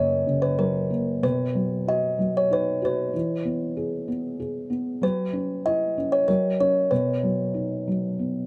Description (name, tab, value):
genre	children's music, lullaby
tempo	95 BPM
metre	3/4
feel	rubato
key	B major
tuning	A4 = 444 Hz
part	music box	melody	0.0-8.1 s	A#4 to D#5	-27 LUFS	equal	none
part	felt-muted upright piano	accompaniment	0.0-8.5 s	F#2 to G#4	-28 LUFS	equal	none
room	little or no reverb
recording	close, detailed microphones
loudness	-25 LUFS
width	mono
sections	0.0-8.5 A section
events	none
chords	0.0 F#; 1.2 B; 3.1 E; 5.0 F#7sus4; 6.3 F#; 6.9 B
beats	0.58 | 1.23 1.88 2.52 | 3.15 3.77 4.40 | 5.02 5.65 6.28 | 6.91 7.54 8.19